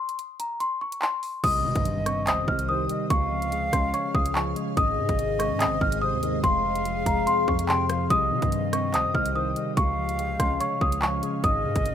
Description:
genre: hip hop, drill.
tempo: 144 BPM.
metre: 4/4.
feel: half-time.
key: C phrygian.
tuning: A4 = 440 Hz.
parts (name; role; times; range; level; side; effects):
celesta; melody; 0.0-11.8 s; Bb5 to F6; -26 LUFS; left 1 dB; none.
drill drum kit; drums; 0.1-11.9 s; crash cymbal, handclaps, hi-hat, kick drum, rim click; -28 LUFS; right 1 dB; none.
hollow silver concert flute; second line; 1.4-11.9 s; C5 to G5; -32 LUFS; right 1 dB; ping-pong delay.
mellow tine electric piano; accompaniment; 1.4-11.9 s; F2 to Db5; -31 LUFS; equal; medium stereo tremolo.
ethereal airy pad; sustained chords; 2.2-11.9 s; C3 to F5; -32 LUFS; left 4 dB; ensemble chorus, built-in reverb, phaser.
hard-hitting 808-style bass; bass; 1.4-11.9 s; F1 to C3; -32 LUFS; right 1 dB; none.
impact; sound effects; 1.5-3.1 s; none; -38 LUFS; right 1 dB; none.
room: little or no reverb.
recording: rough home demo mix.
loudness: -22 LUFS.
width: side -9 dB against mid.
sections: 0.0-1.4 A section; 1.4-11.9 B section.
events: break 0.0-1.4; impact 1.4-3.1.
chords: 0.0 N.C.; 1.4 Cm; 3.1 Db; 4.8 Ab; 6.4 Fm; 8.1 Cm; 9.8 Db; 11.4 Ab.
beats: 0.19 0.60 1.02 | 1.44 1.85 2.27 2.69 | 3.10 3.52 3.94 4.35 | 4.77 5.19 5.60 6.02 | 6.44 6.85 7.27 7.69 | 8.10 8.52 8.94 9.35 | 9.77 10.19 10.60 11.02 | 11.44 11.85.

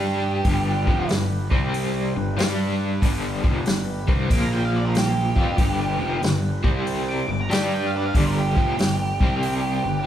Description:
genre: blues rock power trio and southern rock.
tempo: 94 BPM.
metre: 4/4.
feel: swing 66% on 8ths.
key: G mixolydian.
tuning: A4 = 440 Hz.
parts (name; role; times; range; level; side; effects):
octave-fuzz lead guitar; melody; 0.0-10.1 s; G4 to D6; -28 LUFS; right 2 dB; distortion.
tonewheel organ; sustained chords; 0.0-10.1 s; Bb3 to C5; -35 LUFS; right 3 dB; slow rotary speaker.
crunchy overdriven guitar; riff; 0.0-10.0 s; F2 to G4; -24 LUFS; equal; tremolo.
fuzz picked electric bass; bass; 0.0-10.0 s; F1 to G2; -27 LUFS; equal; overdrive.
vintage drum kit; drums; 0.4-9.6 s; hi-hat, kick drum, snare drum; -23 LUFS; equal; none.
room: moderate large studio reverb, RT60 1.4 s.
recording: band playing live in one room, lossy compression artefacts.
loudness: -20 LUFS.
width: side -11 dB against mid.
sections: 0.0-10.1 A section.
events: lead electric guitar solo 0.0-10.1.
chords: 0.0 G; 1.4 C5; 2.1 G; 4.3 Bb5; 5.3 G; 6.5 C5; 7.2 G; 9.1 C5.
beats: | 0.45 1.09 1.73 2.38 | 3.02 3.66 4.30 4.94 | 5.58 6.22 6.86 7.50 | 8.14 8.78 9.42 10.06.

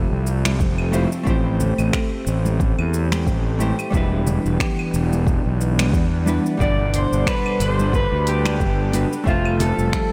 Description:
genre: sunset chillout.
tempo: 90 BPM.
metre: 4/4.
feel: swing 56% on 16ths.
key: G major.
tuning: A4 = 440 Hz.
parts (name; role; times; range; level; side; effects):
hollow-body jazz guitar; accompaniment; 0.0-10.1 s; B2 to F#5; -29 LUFS; equal; tape echo, shimmer reverb.
lush unison pad; sustained chords; 0.0-10.1 s; E3 to F#5; -29 LUFS; equal; chorus, shimmer reverb.
fuzz fingered electric bass; bass; 0.0-9.9 s; E1 to E2; -23 LUFS; equal; overdrive.
deep house drum kit; drums; 0.3-10.1 s; claves, finger snaps, hi-hat, shaker; -32 LUFS; equal; overdrive.
congas; percussion; 0.5-9.7 s; none; -33 LUFS; equal; none.
electronic kick drum; drums; 0.6-10.1 s; none; -25 LUFS; equal; overdrive.
electric guitar at the edge of break-up; melody; 6.6-10.1 s; F4 to D5; -26 LUFS; equal; subtle chorus, tape echo, shimmer reverb.
room: moderate lush hall reverb, RT60 3.4 s.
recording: dreamy mix soaked in reverb.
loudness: -20 LUFS.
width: mono.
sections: 0.0-10.1 A section.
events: none.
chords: 0.0 Fmaj7; 1.3 Am7; 3.9 Em7; 6.6 Gmaj7; 9.3 Fmaj7.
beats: 0.60 | 1.27 1.93 2.60 3.27 | 3.93 4.60 5.27 5.93 | 6.60 7.27 7.93 8.60 | 9.27 9.93.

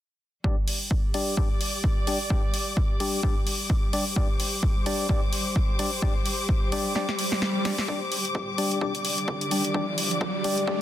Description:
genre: bass house.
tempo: 129 BPM.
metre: 4/4.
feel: swing 57% on 16ths.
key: unclear.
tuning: A4 = 439 Hz.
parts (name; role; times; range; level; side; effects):
percussive organ stab; stabs; 0.4-10.8 s; G3 to D5; -31 LUFS; left 2 dB; chorus, sidechain pumping, tape echo.
electronic kick drum; drums; 0.4-10.8 s; none; -25 LUFS; equal; high-pass filter on kick.
dark chamber string section; texture; 0.4-10.8 s; G3 to D6; -31 LUFS; left 1 dB; sidechain pumping.
house drum kit; drums; 0.7-10.7 s; hi-hat, snare drum; -30 LUFS; equal; none.
swell and riser; sound effects; 7.2-10.8 s; none; -33 LUFS; right 2 dB; none.
dark analog pad; sustained chords; 7.9-10.8 s; D4 to D5; -38 LUFS; right 1 dB; chorus, sidechain pumping.
room: digital ambience.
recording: dense, heavily limited modern master.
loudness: -23 LUFS.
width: side -12 dB against mid.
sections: 0.4-7.9 A section; 7.9-10.8 B section.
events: filter sweep on synth stab 0.4-7.9, 7.9-10.8; kick drops out 7.0-7.9; drum fill 7.0-7.9; swell 7.2-7.9; build-up 7.9-10.8; filter sweep on analog synth pad 7.9-10.8; riser 8.5-10.8.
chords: 0.4 G5.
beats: | 0.44 0.91 1.37 1.84 | 2.30 2.77 3.23 3.70 | 4.16 4.63 5.09 5.56 | 6.03 6.49 6.96 7.42 | 7.88 8.35 8.82 9.28 | 9.75 10.21 10.68.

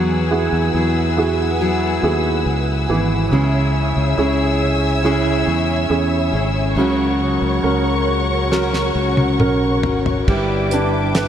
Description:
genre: pop ballad.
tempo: 69 BPM.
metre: 4/4.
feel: straight.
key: unclear.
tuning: A4 = 440 Hz.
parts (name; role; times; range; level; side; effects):
clear upright piano; accompaniment; 0.0-11.3 s; C#3 to B4; -20 LUFS; right 4 dB; none.
dark studio string section; sustained chords; 0.0-11.3 s; A#4 to E6; -23 LUFS; left 2 dB; none.
fingerpicked steel-string acoustic guitar; arpeggios; 0.0-11.3 s; C#3 to B4; -23 LUFS; left 4 dB; analog delay.
fretless electric bass; bass; 0.0-11.3 s; G1 to E2; -21 LUFS; equal; none.
damped 70s drum kit; drums; 8.5-11.3 s; crash cymbal, hi-hat, kick drum, snare drum, toms; -22 LUFS; equal; none.
room: moderate lush hall reverb, RT60 2.9 s.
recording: dreamy mix soaked in reverb.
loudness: -15 LUFS.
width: side -9 dB against mid.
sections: 0.0-10.3 A section; 10.3-11.3 B section.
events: drum fill 8.5-10.3.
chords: 0.0 Eadd9; 3.3 C#m; 6.8 F#/C#; 10.3 G6.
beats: 0.74 1.60 2.46 | 3.32 4.18 5.04 5.90 | 6.77 7.64 8.51 9.40 | 10.28 11.15.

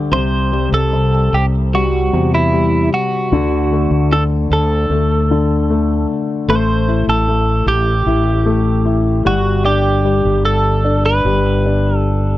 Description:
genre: pop ballad.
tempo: 76 BPM.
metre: 4/4.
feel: straight.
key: unclear.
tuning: A4 = 441 Hz.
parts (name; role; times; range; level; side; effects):
warm concert grand piano; accompaniment; 0.0-12.4 s; D2 to E4; -18 LUFS; left 4 dB; none.
twelve-string electric guitar; melody; 0.1-12.4 s; E4 to C5; -18 LUFS; right 2 dB; tape echo.
fretless electric bass; bass; 0.1-12.4 s; G1 to E2; -16 LUFS; right 1 dB; none.
room: small room ambience.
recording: dry, close 1970s-style studio recording.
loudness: -13 LUFS.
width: side -15 dB against mid.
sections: 0.1-12.4 A section.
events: none.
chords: 0.1 C; 3.3 D; 6.5 A5; 9.3 G.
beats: | 0.12 0.92 1.73 2.52 | 3.32 4.11 4.90 5.70 | 6.49 7.28 8.07 8.86 | 9.65 10.45 11.25 12.05.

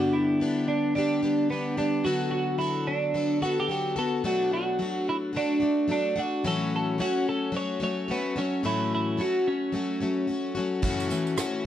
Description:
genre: acoustic pop.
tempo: 109 BPM.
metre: 4/4.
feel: swing 60% on 16ths.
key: unclear.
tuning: A4 = 442 Hz.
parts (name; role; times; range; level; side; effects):
twelve-string electric guitar; melody; 0.0-10.5 s; B3 to C#5; -27 LUFS; right 2 dB; plate reverb.
picked plugged-in twelve-string acoustic guitar; accompaniment; 0.0-11.7 s; F#2 to A4; -27 LUFS; left 3 dB; none.
vintage brush drum kit; drums; 10.8-11.5 s; crash cymbal, kick drum, rim click, shaker; -31 LUFS; right 2 dB; none.
tambourine; percussion; 11.0-11.5 s; none; -40 LUFS; right 12 dB; none.
room: moderate studio reverb, RT60 0.6 s.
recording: dark, warm production.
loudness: -24 LUFS.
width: side -11 dB against mid.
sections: 0.0-10.8 A section.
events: none.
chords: 0.0 G; 2.0 D6; 4.2 Bm7; 6.4 A6; 10.8 F#m7.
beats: 0.40 0.95 1.50 | 2.05 2.60 3.15 3.69 | 4.24 4.79 5.34 5.89 | 6.44 6.99 7.54 8.09 | 8.63 9.18 9.73 10.28 | 10.83 11.38.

